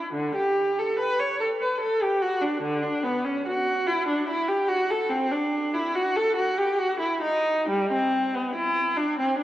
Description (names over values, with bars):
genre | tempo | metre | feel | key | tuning
classical, baroque-style suite movement for unaccompanied viola | 72 BPM | 3/4 | rubato | unclear | A4 = 445 Hz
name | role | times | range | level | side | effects
rich viola | solo | 0.0-9.4 s | D3 to C#5 | -23 LUFS | equal | none
room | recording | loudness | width
wet church reverb, RT60 3.5 s | worn, warbling old tape, cassette tape, warbly pitch drift | -23 LUFS | side -13 dB against mid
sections
0.0-9.4 A section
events
none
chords
none